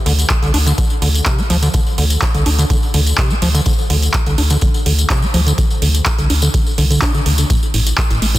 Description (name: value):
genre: acid house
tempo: 125 BPM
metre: 4/4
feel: straight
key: unclear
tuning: A4 = 441 Hz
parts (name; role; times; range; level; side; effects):
- deep acid bass; riff; 0.1-8.4 s; A2 to D4; -19 LUFS; equal; tube saturation, sidechain pumping, ping-pong delay
- round analog bass; bass; 0.1-8.4 s; G1 to D2; -15 LUFS; equal; sidechain pumping
- booming analog drum machine; drums; 0.1-8.4 s; handclaps, hi-hat; -20 LUFS; right 2 dB; none
- tambourine; percussion; 0.2-8.4 s; none; -25 LUFS; left 3 dB; none
- electronic kick drum; drums; 0.3-8.1 s; none; -17 LUFS; equal; none
room: light reverb, digital ambience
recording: dense, heavily limited modern master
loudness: -12 LUFS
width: side -16 dB against mid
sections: 0.0-8.4 A section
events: none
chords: 0.0 D7(no3); 7.5 N.C.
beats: 0.30 0.78 1.26 | 1.74 2.22 2.70 3.18 | 3.66 4.14 4.62 5.10 | 5.58 6.06 6.54 7.02 | 7.50 7.98